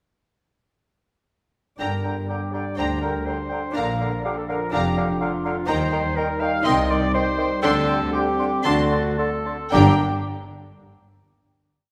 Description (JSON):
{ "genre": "quick classical-period movement for symphony orchestra", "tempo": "108-127 BPM", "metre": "4/4", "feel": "rubato", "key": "G minor", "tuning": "A4 = 440 Hz", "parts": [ { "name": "rich studio violin section", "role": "melody", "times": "1.8-10.0 s", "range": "G5 to C6", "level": "-33 LUFS", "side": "equal", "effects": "none" }, { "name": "clear clarinet", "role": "second line", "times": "1.8-9.9 s", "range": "F4 to F5", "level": "-31 LUFS", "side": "equal", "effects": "none" }, { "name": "dark studio violin section", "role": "second line", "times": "1.8-10.0 s", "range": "Bb4 to A5", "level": "-34 LUFS", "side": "equal", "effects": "none" }, { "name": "mellow hollow silver concert flute", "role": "second line", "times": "1.8-10.0 s", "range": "Bb5 to C6", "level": "-36 LUFS", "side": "equal", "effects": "none" }, { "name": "warm oboe", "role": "second line", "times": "1.8-9.9 s", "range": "F5 to A5", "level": "-35 LUFS", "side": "equal", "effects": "none" }, { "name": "warm bassoon", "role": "accompaniment", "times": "1.8-9.9 s", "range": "D3 to Eb3", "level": "-32 LUFS", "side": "equal", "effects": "none" }, { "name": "warm chamber viola section", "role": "accompaniment", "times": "1.8-10.0 s", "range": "D4 to Eb4", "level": "-29 LUFS", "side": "equal", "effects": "none" }, { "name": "dark French horn section", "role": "sustained chords", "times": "1.8-9.9 s", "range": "F3 to Eb4", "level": "-31 LUFS", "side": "equal", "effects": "none" }, { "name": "dark trumpet", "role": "stabs", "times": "1.8-9.9 s", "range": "F4 to F5", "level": "-32 LUFS", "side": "equal", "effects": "none" }, { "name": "warm studio cello section", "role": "bass", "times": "1.8-10.0 s", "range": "D2 to Eb3", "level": "-31 LUFS", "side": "equal", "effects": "none" }, { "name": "warm studio double bass section", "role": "bass", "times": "1.8-10.0 s", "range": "F1 to Eb2", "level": "-30 LUFS", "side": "equal", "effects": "none" } ], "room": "wet scoring stage reverb, RT60 1.8 s", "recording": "none", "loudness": "-22 LUFS", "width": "mono", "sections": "1.8-9.7 A section; 9.7-11.8 final chord", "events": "slowing down 4.7-9.7", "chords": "1.8 Gm; 3.8 Bb; 5.7 Eb; 6.7 Cm; 7.6 D7sus4; 8.6 D7; 9.7 Gm" }